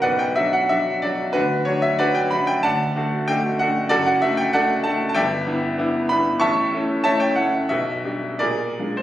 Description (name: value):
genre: classical, romantic character piece for solo piano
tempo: 94 BPM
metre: 2/4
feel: uneven beats, rubato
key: B minor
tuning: A4 = 444 Hz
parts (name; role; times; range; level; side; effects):
- bright grand piano; solo; 0.0-9.0 s; F#1 to C#6; -18 LUFS; equal; none
room: moderate recital hall reverb, RT60 1.3 s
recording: recorded on a phone in the room, club reverb, compression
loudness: -18 LUFS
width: side -13 dB against mid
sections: 0.0-9.0 A section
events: none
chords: 0.0 Bm; 1.3 Bm/D; 2.6 D; 3.9 D/F#; 5.2 Em7/G; 6.4 A; 7.7 G/B; 8.4 Bb7